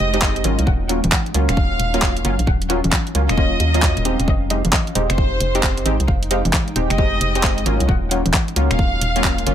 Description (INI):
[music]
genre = UK garage, two-step garage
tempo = 133 BPM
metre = 4/4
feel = swing 64% on 16ths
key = unclear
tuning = A4 = 441 Hz
[part]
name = rich studio violin section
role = melody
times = 0.0-9.5 s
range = C5 to Gb5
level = -25 LUFS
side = equal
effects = tape echo
[part]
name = punchy chord stab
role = stabs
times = 0.0-9.5 s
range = Gb3 to G4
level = -23 LUFS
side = equal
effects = chorus
[part]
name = organ-like FM bass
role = bass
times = 0.0-9.5 s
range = Eb1 to Eb2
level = -20 LUFS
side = equal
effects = none
[part]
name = granular cloud pad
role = texture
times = 0.0-9.5 s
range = Gb3 to G5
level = -30 LUFS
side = left 1 dB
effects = built-in reverb, sidechain pumping
[part]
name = garage drum kit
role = drums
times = 0.1-9.5 s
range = congas, finger snaps, handclaps, hi-hat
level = -20 LUFS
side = right 1 dB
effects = overdrive
[part]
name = electronic kick drum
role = drums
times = 0.2-9.4 s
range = none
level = -20 LUFS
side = equal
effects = none
[sound]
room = little or no reverb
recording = none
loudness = -16 LUFS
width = side -10 dB against mid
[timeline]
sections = 0.0-9.5 A section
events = none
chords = 0.0 Ebm9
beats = 0.22 | 0.67 1.12 1.57 2.02 | 2.47 2.92 3.38 3.83 | 4.28 4.73 5.18 5.63 | 6.08 6.53 6.99 7.44 | 7.89 8.34 8.79 9.24